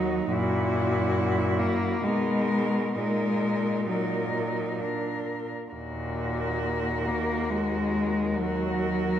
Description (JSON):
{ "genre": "classical, lyrical piece for cello ensemble", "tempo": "67 BPM", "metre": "3/4", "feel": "uneven beats, rubato", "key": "Eb minor", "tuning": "A4 = 440 Hz", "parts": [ { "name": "rich cello", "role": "melody", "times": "0.0-9.2 s", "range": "Gb4 to Bb4", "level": "-32 LUFS", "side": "left 5 dB", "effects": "none" }, { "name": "clear cello", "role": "second line", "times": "0.0-9.2 s", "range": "D4 to Gb4", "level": "-33 LUFS", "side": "right 6 dB", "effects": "none" }, { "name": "clear cello", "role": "accompaniment", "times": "0.0-9.2 s", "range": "Bb2 to Bb3", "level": "-27 LUFS", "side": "left 2 dB", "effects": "none" }, { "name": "rich cello", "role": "bass", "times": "0.0-9.2 s", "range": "Eb2 to B2", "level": "-31 LUFS", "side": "right 2 dB", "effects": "none" } ], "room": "moderate concert hall reverb, RT60 2.0 s", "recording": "none", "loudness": "-24 LUFS", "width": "side -10 dB against mid", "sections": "0.0-9.2 A section", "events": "none", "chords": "0.3 Gb7; 2.0 Bmaj7; 3.0 Ebm/Bb; 4.8 Bb; 5.7 Ebm", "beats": "| 0.33 1.17 2.05 | 2.96 3.89 4.80 | 5.72 6.62 7.51 | 8.39" }